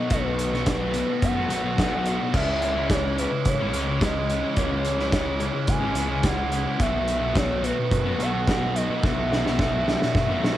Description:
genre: rock, shoegaze and dream pop.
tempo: 108 BPM.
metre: 4/4.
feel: straight.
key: unclear.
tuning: A4 = 440 Hz.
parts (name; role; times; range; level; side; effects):
pure breathy sine lead; melody; 0.0-10.6 s; B4 to G#5; -28 LUFS; right 1 dB; chorus, plate reverb, analog delay.
cranked stack guitar; riff; 0.0-10.6 s; B2 to F#4; -29 LUFS; right 7 dB; overdrive, reverse reverb, cassette tape.
thick fuzz guitar; riff; 0.0-10.6 s; B2 to C#4; -28 LUFS; left 6 dB; distortion, lush chorus, cassette tape.
fuzz fingered electric bass; bass; 0.1-10.6 s; G#1 to F#2; -30 LUFS; equal; overdrive.
loose indie drum kit; drums; 0.1-10.6 s; crash cymbal, hi-hat, kick drum, snare drum; -26 LUFS; equal; cassette tape.
room: light reverb.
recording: home recording on cassette.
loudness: -21 LUFS.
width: side -13 dB against mid.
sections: 0.0-10.6 A section.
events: drum fill 9.0-10.6.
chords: 0.0 B7; 2.3 C#m; 6.8 B7sus4.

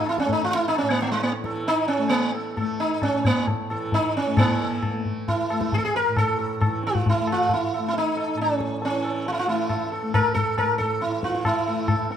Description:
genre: indian classical, Hindustani.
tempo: 135 BPM.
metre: 4/4.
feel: straight.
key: A major.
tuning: A4 = 439 Hz.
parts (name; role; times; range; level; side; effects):
sitar; melody; 0.0-12.2 s; G#3 to Bb4; -23 LUFS; right 1 dB; none.
tanpura; drone; 0.0-12.2 s; A2 to A3; -31 LUFS; left 2 dB; none.
tabla; percussion; 0.1-12.2 s; none; -26 LUFS; left 2 dB; none.
room: moderate scoring stage reverb, RT60 1.8 s.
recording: minimal, uncompressed stereo recording.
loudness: -21 LUFS.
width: side -9 dB against mid.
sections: 0.0-4.4 A section; 4.4-12.2 B section.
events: speeding up 0.0-12.2.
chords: none.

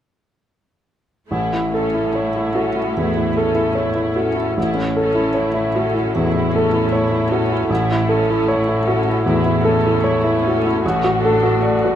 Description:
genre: classical, romantic movement for piano and orchestra.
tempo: 76 BPM.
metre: 4/4.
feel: rubato.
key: A major.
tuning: A4 = 443 Hz.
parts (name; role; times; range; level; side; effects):
clear baby grand piano; melody; 1.3-12.0 s; A1 to D5; -17 LUFS; equal; none.
rich symphonic viola section; accompaniment; 1.3-12.0 s; A3 to A4; -25 LUFS; left 1 dB; none.
rich symphonic cello section; bass; 1.3-12.0 s; A2; -24 LUFS; left 1 dB; none.
room: moderate scoring stage reverb, RT60 1.8 s.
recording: close, detailed microphones.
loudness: -16 LUFS.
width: side -10 dB against mid.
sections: 1.3-12.0 A section.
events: none.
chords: 1.3 A; 10.8 D/A.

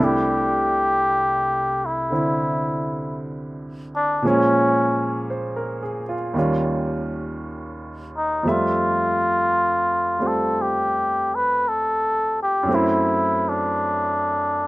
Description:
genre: jazz ballad.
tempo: 57 BPM.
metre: 4/4.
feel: swing 69% on 8ths.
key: C major.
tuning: A4 = 441 Hz.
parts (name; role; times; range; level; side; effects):
trumpet with cup mute; melody; 0.0-14.7 s; Db4 to B4; -20 LUFS; left 1 dB; none.
clear baby grand piano; accompaniment; 0.0-14.7 s; C2 to E5; -23 LUFS; right 1 dB; none.
room: moderate studio ambience, RT60 0.5 s.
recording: rough home demo mix.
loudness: -19 LUFS.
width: side -20 dB against mid.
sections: 0.0-14.7 A section.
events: none.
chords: 0.0 C6; 4.2 Bbm7; 6.3 Eb9; 8.4 Fmaj9; 12.7 F#m7b5.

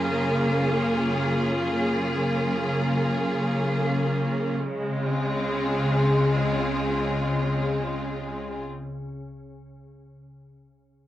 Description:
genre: ambient.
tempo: free time.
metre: none.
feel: none.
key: Db major.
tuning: A4 = 437 Hz.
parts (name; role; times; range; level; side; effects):
clear studio string section; sustained chords; 0.0-8.6 s; Db3 to Ab4; -24 LUFS; equal; cassette tape.
deep rumbling drone; bass; 0.0-7.0 s; Db2 to Gb2; -44 LUFS; equal; built-in reverb, tube saturation.
organ-like drone; drone; 0.0-8.4 s; Db3; -28 LUFS; left 1 dB; ensemble chorus, built-in reverb, cassette tape.
room: wet studio reverb, RT60 0.5 s.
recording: home recording on cassette.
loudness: -22 LUFS.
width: side -13 dB against mid.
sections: 0.0-4.6 A section; 4.6-7.9 B section.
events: none.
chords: 0.0 Gbmaj9; 4.6 Dbmaj7.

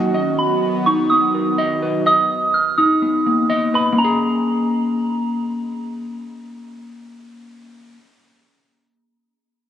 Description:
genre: hip hop.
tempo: 125 BPM.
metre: 4/4.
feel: half-time.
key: Bb minor.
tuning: A4 = 444 Hz.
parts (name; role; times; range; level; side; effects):
airy breathy pad; sustained chords; 0.0-2.0 s; Eb3 to Gb4; -22 LUFS; right 3 dB; chorus.
mellow electric guitar; arpeggios; 0.0-8.1 s; Bb3 to Gb5; -20 LUFS; left 2 dB; low-pass filter, ping-pong delay.
soft synth bell; melody; 0.4-5.4 s; Bb5 to F6; -18 LUFS; right 2 dB; chorus, phaser, low-pass filter, ping-pong delay.
room: light reverb.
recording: recorded on a phone in the room, club reverb.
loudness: -16 LUFS.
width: side -10 dB against mid.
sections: 0.0-4.0 A section; 4.0-7.8 B section.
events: none.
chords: 0.1 Bmaj7; 4.0 Bbm7.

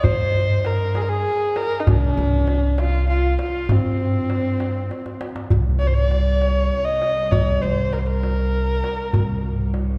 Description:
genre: Persian modal ensemble.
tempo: 66 BPM (dotted quarters).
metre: 6/8.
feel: straight.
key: C dastgah shur.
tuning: A4 = 440 Hz.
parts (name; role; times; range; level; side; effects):
warm kamancheh; melody; 0.0-9.7 s; C4 to Eb5; -25 LUFS; equal; none.
santur; second line; 0.0-9.1 s; C4 to F5; -38 LUFS; equal; none.
upright bass; bass; 0.0-10.0 s; C2 to G2; -24 LUFS; equal; none.
tombak; percussion; 0.0-9.9 s; none; -26 LUFS; equal; none.
rich studio cello section; drone; 5.5-10.0 s; C2; -31 LUFS; equal; none.
room: wet concert hall reverb, RT60 2.1 s.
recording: heard from further back in the room.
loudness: -20 LUFS.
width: mono.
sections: 0.0-5.5 A section; 5.5-10.0 B section.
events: drum fill 4.9-5.5.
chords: none.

